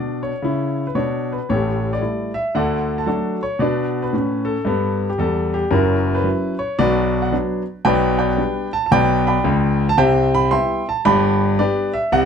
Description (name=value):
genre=jazz, stride piano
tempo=113 BPM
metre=4/4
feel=swing 62% on 8ths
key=G major from 7.9 s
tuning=A4 = 443 Hz
part: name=clear grand piano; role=solo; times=0.0-12.3 s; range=F#1 to C6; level=-16 LUFS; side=equal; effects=none
room=wet club reverb, RT60 0.6 s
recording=dark, warm production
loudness=-17 LUFS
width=side -7 dB against mid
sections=0.0-12.3 A section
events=none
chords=0.0 N.C.; 1.5 A5; 2.5 D; 3.6 Bm; 5.7 F#5; 6.8 Bm; 7.9 G/B; 10.0 Cmaj7; 11.0 G